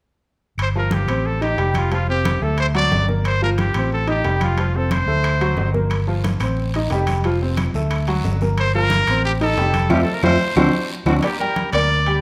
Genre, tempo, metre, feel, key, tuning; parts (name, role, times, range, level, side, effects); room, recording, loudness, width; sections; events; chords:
latin, salsa; 180 BPM; 4/4; straight; G minor; A4 = 440 Hz
bright trumpet; melody; 0.6-5.7, 8.6-12.2 s; F4 to D5; -24 LUFS; equal
fingered electric bass; bass; 0.6-12.2 s; F1 to F2; -23 LUFS; equal
claves; percussion; 0.6-11.9 s; -39 LUFS; equal
congas; percussion; 0.6-12.2 s; -29 LUFS; equal
timbales; percussion; 0.6-12.2 s; -31 LUFS; equal
bright upright piano; accompaniment; 0.8-12.2 s; F3 to G5; -25 LUFS; equal
guiro; percussion; 5.9-11.1 s; -39 LUFS; equal
moderate large studio reverb, RT60 1.4 s; -19 LUFS; mono
0.6-11.2 A section
band accent 9.9-11.2
0.6 Gm11; 1.3 Am7b5; 1.9 F; 2.6 D; 3.2 Gm7; 3.9 Am7b5; 4.6 F; 5.2 D7; 5.9 Gm7; 6.6 Am7b5; 7.2 F; 7.9 D; 8.6 Gm7; 9.2 Am7b5; 9.9 F; 10.6 D7; 11.2 Gm